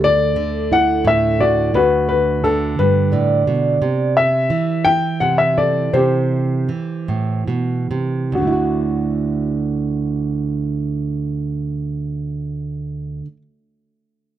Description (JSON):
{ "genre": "acoustic folk-pop ballad", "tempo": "46-58 BPM (dotted quarters)", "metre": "6/8", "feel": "straight", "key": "D mixolydian", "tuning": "A4 = 439 Hz", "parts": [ { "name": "warm upright piano", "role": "melody", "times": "0.0-13.2 s", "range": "F#4 to G5", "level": "-17 LUFS", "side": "left 3 dB", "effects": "none" }, { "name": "nylon-string guitar", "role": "accompaniment", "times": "0.0-13.4 s", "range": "D2 to A4", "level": "-19 LUFS", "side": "right 3 dB", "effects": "none" }, { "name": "vibraphone with soft mallets", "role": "arpeggios", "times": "0.0-4.1 s", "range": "A4 to D5", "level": "-22 LUFS", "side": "right 3 dB", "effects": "none" } ], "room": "small room reverb", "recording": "dry, close 1970s-style studio recording", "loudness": "-16 LUFS", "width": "side -11 dB against mid", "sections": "0.0-8.3 A section; 8.3-13.5 B section", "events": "slowing down 3.8-8.3", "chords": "0.0 Dadd9; 3.8 Am7/C; 8.3 Dadd9", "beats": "0.70 | 1.74 2.78 | 3.81 4.85 | 5.93 7.08 | 8.32 9.62 | 10.92 12.21" }